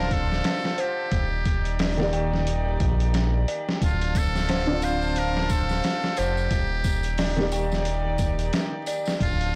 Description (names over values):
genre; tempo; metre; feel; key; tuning
trip hop; 89 BPM; 4/4; swing 59% on 16ths; unclear; A4 = 445 Hz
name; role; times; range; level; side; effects
trumpet with metal mute; melody; 0.0-9.6 s; F4 to C5; -33 LUFS; equal; tape echo
felt-muted upright piano; accompaniment; 0.0-9.2 s; D3 to D5; -33 LUFS; equal; tremolo, tape echo
warm studio violin section; sustained chords; 0.0-9.6 s; D4 to A5; -36 LUFS; equal; vintage 12-bit sampler grit
dark detuned synth bell; arpeggios; 0.0-9.2 s; C5 to G5; -35 LUFS; equal; chorus, tape echo
round analog bass; bass; 0.0-9.6 s; D1 to Bb1; -28 LUFS; equal; transformer saturation
trip hop sampler-style drum kit; drums; 0.1-9.5 s; hi-hat, kick drum, snare drum; -29 LUFS; equal; overdrive, studio reverb
tambourine; percussion; 3.8-9.4 s; none; -44 LUFS; equal; none
room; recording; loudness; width
small room reverb; blown-out, overdriven recording, vinyl crackle, overdrive; -25 LUFS; mono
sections
0.0-9.6 A section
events
none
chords
0.0 Dm7; 1.1 Ebmaj7; 3.8 Dm7; 6.5 Ebmaj7